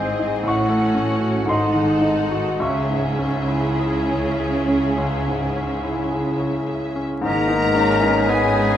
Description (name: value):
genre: classical, romantic movement for piano and orchestra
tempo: 50-61 BPM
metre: 4/4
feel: rubato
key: C# minor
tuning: A4 = 440 Hz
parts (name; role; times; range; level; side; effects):
- bright grand piano; melody; 0.0-8.8 s; C#2 to D#6; -21 LUFS; left 1 dB; none
- rich studio violin section; melody; 0.0-8.8 s; D#5 to A#5; -30 LUFS; left 5 dB; none
- clear symphonic violin section; second line; 0.0-8.8 s; G#3 to A4; -30 LUFS; left 1 dB; none
- rich symphonic viola section; accompaniment; 0.0-8.8 s; D#3 to D#4; -28 LUFS; right 3 dB; none
- clear symphonic cello section; bass; 0.0-8.8 s; G#2 to C#3; -26 LUFS; right 1 dB; none
- warm symphonic double bass section; bass; 0.0-8.8 s; G#1 to C#2; -28 LUFS; right 1 dB; none
- warm oboe; second line; 7.2-8.8 s; G#4 to A#4; -25 LUFS; right 1 dB; none
- bright clarinet; second line; 7.3-8.8 s; D#4; -29 LUFS; equal; none
- mellow hollow silver concert flute; second line; 7.3-8.8 s; B6; -26 LUFS; left 2 dB; none
- mellow bassoon; accompaniment; 7.3-8.8 s; C#4 to D#4; -26 LUFS; equal; none
- bright trombone section; sustained chords; 7.3-7.7 s; D#3 to G#3; -31 LUFS; right 2 dB; none
- dark French horn section; sustained chords; 7.3-8.8 s; G#3 to A#3; -25 LUFS; left 4 dB; none
room: moderate scoring stage reverb, RT60 1.4 s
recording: vinyl crackle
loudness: -18 LUFS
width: side -10 dB against mid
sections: 0.0-7.3 A section; 7.3-8.8 B section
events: none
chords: 0.5 F#m/A; 1.5 G#7b9; 2.6 C#m; 7.3 G#m